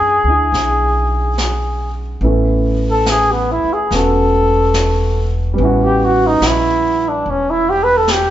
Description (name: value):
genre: jazz ballad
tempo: 72 BPM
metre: 4/4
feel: swing 69% on 8ths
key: A major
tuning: A4 = 440 Hz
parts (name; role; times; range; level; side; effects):
- mellow flugelhorn; melody; 0.0-8.3 s; B3 to B4; -14 LUFS; equal; none
- dark concert grand piano; accompaniment; 0.0-8.3 s; G3 to A4; -20 LUFS; right 1 dB; none
- upright bass; bass; 0.0-8.3 s; E1 to F#2; -18 LUFS; equal; none
- jazz brush drum kit; drums; 0.5-8.3 s; brushed snare drum, hi-hat, snare drum; -23 LUFS; left 1 dB; none
room: moderate large studio reverb, RT60 1.2 s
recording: band playing live in one room, nothing above 7.7 kHz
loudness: -12 LUFS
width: side -12 dB against mid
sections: 0.0-2.2 A section; 2.2-8.3 B section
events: flugelhorn solo 2.2-8.3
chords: 0.0 E13; 2.2 Aadd9; 5.6 A13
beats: 0.53 1.37 | 2.22 3.06 3.90 4.74 | 5.57 6.41 7.25 8.08